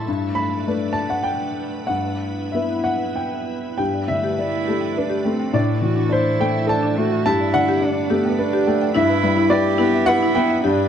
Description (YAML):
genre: neoclassical piano and strings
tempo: 92-109 BPM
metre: 3/4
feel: rubato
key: G major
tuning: A4 = 439 Hz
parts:
  - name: warm grand piano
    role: accompaniment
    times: 0.0-10.9 s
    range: G2 to B5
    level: -20 LUFS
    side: left 2 dB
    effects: none
  - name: soft additive organ-like pad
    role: sustained chords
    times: 0.0-10.9 s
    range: A3 to B4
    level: -29 LUFS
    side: right 3 dB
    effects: ensemble chorus, built-in reverb
  - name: buzzing marimba with hard mallets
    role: arpeggios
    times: 3.8-10.9 s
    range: D4 to G5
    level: -24 LUFS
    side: left 2 dB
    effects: slapback echo
  - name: muted cello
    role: second line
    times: 4.4-10.9 s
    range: B3 to G4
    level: -22 LUFS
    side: right 8 dB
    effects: none
room: light reverb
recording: close, detailed microphones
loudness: -18 LUFS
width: side -8 dB against mid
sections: 0.0-3.8 A section; 3.8-10.9 B section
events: none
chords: 0.1 Gadd9; 1.9 Em/G; 3.8 Gadd9; 5.5 Dsus2/A; 7.3 Gadd9; 9.0 Em/G